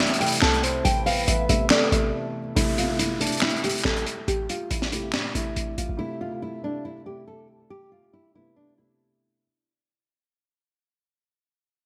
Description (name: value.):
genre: hip hop, trap.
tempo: 140 BPM.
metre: 4/4.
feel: half-time.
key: A minor.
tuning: A4 = 440 Hz.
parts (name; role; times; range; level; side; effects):
nylon-string guitar; melody; 0.0-9.4 s; D4 to A5; -31 LUFS; equal; none.
dark concert grand piano; accompaniment; 0.0-9.4 s; C3 to G4; -35 LUFS; equal; none.
sweeping resonant pad; sustained chords; 0.0-2.5 s; C3 to E4; -39 LUFS; equal; none.
short 808-style bass; bass; 0.0-6.0 s; A1 to E3; -30 LUFS; equal; none.
crunchy breakbeat drum kit; drums; 0.1-5.9 s; handclaps, hi-hat, snare drum; -26 LUFS; equal; gated reverb.
soft octave-layered synth lead; second line; 0.4-2.1 s; A4 to C5; -32 LUFS; equal; chorus, digital delay.
downlifter; sound effects; 2.6-6.0 s; none; -37 LUFS; equal; none.
room: moderate lush hall reverb, RT60 2.1 s.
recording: bright 1980s-style digital production.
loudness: -24 LUFS.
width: mono.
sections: 0.0-2.6 A section; 2.6-9.4 B section.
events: break 2.1-2.6; fade-out 2.6-9.4.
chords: 0.0 Am.